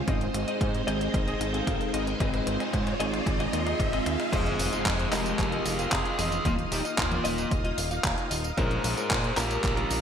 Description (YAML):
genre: italo disco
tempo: 113 BPM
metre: 4/4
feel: straight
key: F minor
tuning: A4 = 440 Hz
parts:
  - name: string machine, full ensemble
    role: sustained chords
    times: 0.0-10.0 s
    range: Ab3 to Eb6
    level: -32 LUFS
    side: equal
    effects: phaser, ensemble chorus
  - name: fat analog bass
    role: bass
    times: 0.0-10.0 s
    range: Eb1 to Bb2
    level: -32 LUFS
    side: equal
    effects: none
  - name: riser and impact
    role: sound effects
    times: 0.1-6.5 s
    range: none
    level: -37 LUFS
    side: equal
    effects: none
  - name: direct-recorded clean electric guitar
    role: stabs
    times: 0.1-10.0 s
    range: Ab3 to F5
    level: -33 LUFS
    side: left 1 dB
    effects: ensemble chorus
  - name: clean 12-bit digital drum machine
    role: drums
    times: 0.1-10.0 s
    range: crash cymbal, handclaps, hi-hat, tambourine, toms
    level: -32 LUFS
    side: equal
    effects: overdrive, high-pass filter on hats, high-pass filter on toms, high-pass filter on cymbals, high-pass filter on perc, high-pass filter on snare, high-pass filter on room, gated reverb
  - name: electronic kick drum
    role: drums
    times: 0.1-9.7 s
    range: none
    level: -30 LUFS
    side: equal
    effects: none
  - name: biting lead guitar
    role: melody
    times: 4.3-10.0 s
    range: Bb3 to C5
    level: -31 LUFS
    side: equal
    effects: overdrive, digital delay
room: moderate plate reverb, RT60 1.9 s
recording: bright 1980s-style digital production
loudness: -25 LUFS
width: side -8 dB against mid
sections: 0.0-4.3 A section; 4.3-10.0 B section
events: drum fill 0.0-4.3; riser 0.1-4.3; impact 4.3-6.5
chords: 0.1 Ab; 4.3 Fm7; 6.5 Ebsus2; 8.6 Bbm7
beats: | 0.08 0.61 1.14 1.67 | 2.20 2.73 3.27 3.80 | 4.33 4.86 5.39 5.92 | 6.45 6.98 7.51 8.04 | 8.57 9.11 9.64